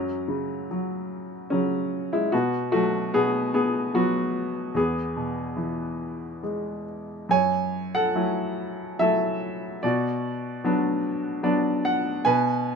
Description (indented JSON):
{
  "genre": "classical, lyrical solo piano",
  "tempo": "67-76 BPM",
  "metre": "3/4",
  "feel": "rubato",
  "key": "F# minor from 7.3 s",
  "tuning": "A4 = 440 Hz",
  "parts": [
    { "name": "clear baby grand piano", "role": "solo", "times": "0.0-12.8 s", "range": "E2 to G#5", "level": "-23 LUFS", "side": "equal", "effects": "none" }
  ],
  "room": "little or no reverb",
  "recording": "close, detailed microphones",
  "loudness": "-23 LUFS",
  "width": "side -5 dB against mid",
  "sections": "0.0-7.3 A section; 7.3-12.8 B section",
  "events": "grand piano fill 11.0-12.2",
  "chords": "0.0 F#5; 2.3 B5; 4.7 E; 7.3 F#m7; 9.8 Bm; 12.2 G#m/B"
}